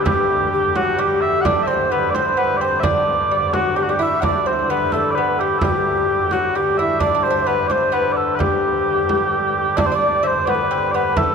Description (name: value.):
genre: medieval dance.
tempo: 86 BPM (dotted quarters).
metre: 6/8.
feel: straight.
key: G major.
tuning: A4 = 441 Hz.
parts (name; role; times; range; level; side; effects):
mellow small bagpipes; melody; 0.0-11.3 s; F#4 to F#5; -18 LUFS; right 1 dB; none.
breathy mellow alto recorder; second line; 0.0-11.3 s; F#4 to E5; -22 LUFS; left 4 dB; none.
lute; second line; 0.0-11.3 s; F#3 to E4; -26 LUFS; right 4 dB; none.
hand-pumped harmonium; drone; 0.0-11.3 s; G2 to D3; -28 LUFS; equal; none.
frame drum; percussion; 0.1-11.3 s; none; -26 LUFS; right 1 dB; none.
room: wet cathedral reverb, RT60 5.8 s.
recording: recorded in a church or concert hall.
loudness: -16 LUFS.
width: side -6 dB against mid.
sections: 0.0-9.8 A section; 9.8-11.3 B section.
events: none.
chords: none.